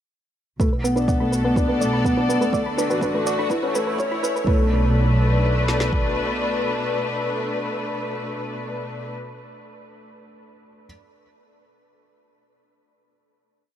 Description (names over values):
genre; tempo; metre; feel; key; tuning
piano and strings electronica; 124 BPM; 4/4; straight; B minor; A4 = 440 Hz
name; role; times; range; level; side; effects
rich studio string section; sustained chords; 0.6-9.1 s; A2 to D5; -26 LUFS; left 2 dB; sidechain pumping
soft round pluck; arpeggios; 0.6-4.7 s; B4 to B5; -29 LUFS; right 4 dB; chorus, sidechain pumping, tape echo
felt-muted upright piano; riff; 0.6-10.9 s; A3 to F#4; -24 LUFS; left 1 dB; tape echo
dark symphonic double bass section; bass; 0.6-5.9 s; A1 to D2; -24 LUFS; equal; tube saturation, sidechain pumping
deep house drum kit; drums; 0.6-6.0 s; kick drum, snare drum; -23 LUFS; equal; studio reverb
shaker; drums; 0.6-4.5 s; none; -37 LUFS; left 1 dB; studio reverb
room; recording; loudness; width
light reverb, studio reverb; high-pass filter; -19 LUFS; side -10 dB against mid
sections
0.6-4.5 build; 4.5-8.3 final chord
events
build-up 0.6-4.5; filter sweep on synth arpeggio sound 0.6-4.5; filter sweep 0.6-4.5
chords
0.6 Bm7; 2.5 D; 3.5 A; 4.5 Bm7